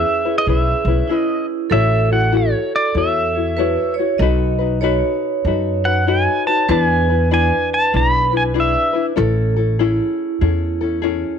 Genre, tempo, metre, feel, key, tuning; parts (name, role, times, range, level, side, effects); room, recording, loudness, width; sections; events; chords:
Hawaiian; 96 BPM; 4/4; swing 63% on 8ths; A major; A4 = 443 Hz
pedal steel guitar; melody; 0.0-9.1 s; C#5 to B5; -18 LUFS; right 1 dB
vibraphone with medium hard mallets; second line; 0.0-11.4 s; E4 to D#5; -22 LUFS; right 10 dB
tenor ukulele; accompaniment; 0.0-11.4 s; C#4 to C#5; -21 LUFS; left 12 dB
upright bass; bass; 0.0-11.2 s; A1 to F#2; -19 LUFS; equal
light reverb, small room reverb; 1960s-style stereo with parts hard left and right; -15 LUFS; side -7 dB against mid
0.0-1.7 A section; 1.7-11.4 B section
0.0 E6; 1.7 A6; 4.2 B7; 6.7 E7; 9.2 Amaj7